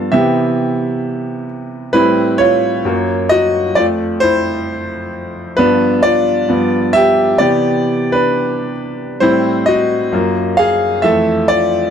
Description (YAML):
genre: R&B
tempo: 66 BPM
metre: 4/4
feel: swing 61% on 16ths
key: C major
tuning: A4 = 440 Hz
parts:
  - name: bright concert grand piano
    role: solo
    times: 0.0-11.9 s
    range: F2 to F5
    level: -12 LUFS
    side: equal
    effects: none
room: moderate studio reverb, RT60 0.6 s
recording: none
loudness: -12 LUFS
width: side -8 dB against mid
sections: 0.0-11.9 A section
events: grand piano solo 0.0-11.9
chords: 0.1 Cmaj7; 1.9 Am9; 2.8 F#maj7; 3.8 Fmaj7; 5.6 G7; 7.4 Cmaj9; 9.2 Am7; 10.1 F#maj7; 11.0 Fmaj7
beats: 0.12 1.02 | 1.93 2.84 3.75 4.66 | 5.57 6.48 7.39 8.30 | 9.21 10.12 11.03